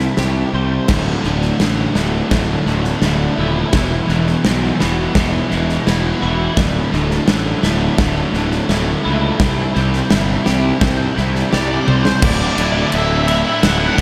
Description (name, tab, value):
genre	post-rock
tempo	85 BPM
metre	4/4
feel	straight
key	unclear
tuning	A4 = 439 Hz
part	clean electric guitar	arpeggios	0.0-14.0 s	D2 to C5	-27 LUFS	equal	ensemble chorus, tape echo
part	sludgy distorted guitar	riff	0.0-14.0 s	D2 to E4	-24 LUFS	equal	overdrive
part	fuzz fingered electric bass	bass	0.0-14.0 s	D1 to C#2	-21 LUFS	equal	overdrive
part	big rock drum kit	drums	0.2-14.0 s	crash cymbal, kick drum, ride cymbal, snare drum, toms	-21 LUFS	equal	none
part	crunchy overdriven guitar	riff	0.9-14.0 s	D2 to E4	-25 LUFS	equal	subtle chorus
part	octave-fuzz lead guitar	melody	11.5-14.0 s	C5 to F#5	-22 LUFS	equal	distortion, tape echo
room	moderate lush hall reverb, RT60 2.0 s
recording	dreamy mix soaked in reverb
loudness	-16 LUFS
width	mono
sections	0.0-12.2 A section; 12.2-14.0 B section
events	build-up 0.0-12.2; drum fill 11.9-12.2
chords	0.0 C; 0.9 Dsus2; 3.7 E; 6.6 Dsus2; 9.4 C; 12.2 Dsus2